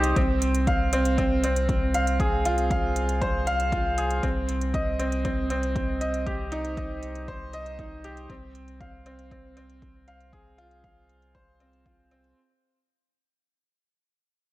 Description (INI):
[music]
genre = piano and strings electronica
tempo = 118 BPM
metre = 4/4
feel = straight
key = unclear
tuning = A4 = 440 Hz
[part]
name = bright upright piano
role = riff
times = 0.0-12.4 s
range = C4 to F5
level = -27 LUFS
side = right 1 dB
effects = digital delay
[part]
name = round analog bass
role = bass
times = 0.0-12.3 s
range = C2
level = -29 LUFS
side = left 1 dB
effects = sidechain pumping
[part]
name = electronic hi-hat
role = drums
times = 0.0-12.3 s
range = none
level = -39 LUFS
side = right 4 dB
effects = low-pass filter on hats, low-pass filter on room
[part]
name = electronic kick drum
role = drums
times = 0.2-12.0 s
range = none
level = -29 LUFS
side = equal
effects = none
[sound]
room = light reverb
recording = none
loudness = -23 LUFS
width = side -17 dB against mid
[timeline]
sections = 0.0-12.4 A section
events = fade-out 0.0-12.4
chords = 0.2 Fm/C; 4.2 Cm; 8.3 Fm/C